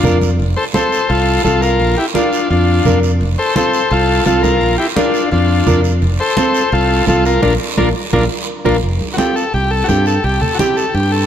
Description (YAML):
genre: latin, cumbia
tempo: 171 BPM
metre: 4/4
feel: straight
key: F major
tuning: A4 = 440 Hz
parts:
  - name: combo organ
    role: melody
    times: 0.0-11.3 s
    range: D4 to C5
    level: -15 LUFS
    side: left 2 dB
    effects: none
  - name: nylon-string guitar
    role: accompaniment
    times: 0.0-10.8 s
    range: C4 to Bb4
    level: -20 LUFS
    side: right 3 dB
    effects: none
  - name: fingered electric bass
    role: bass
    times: 0.0-11.2 s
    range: F1 to G2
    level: -15 LUFS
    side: equal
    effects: none
  - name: congas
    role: percussion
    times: 0.0-11.1 s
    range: none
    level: -22 LUFS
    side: left 1 dB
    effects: none
  - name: guiro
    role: percussion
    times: 0.0-11.3 s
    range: none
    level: -27 LUFS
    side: right 6 dB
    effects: none
room: moderate plate reverb, RT60 2.8 s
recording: heard from further back in the room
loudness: -12 LUFS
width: side -9 dB against mid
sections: 0.0-8.8 A section; 8.8-11.3 B section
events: band accent 7.4-8.8; transistor combo organ solo 8.8-11.3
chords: 0.4 F; 1.8 Bb; 3.2 F; 4.6 Bb; 6.0 F; 7.4 Bb; 8.8 F; 10.2 C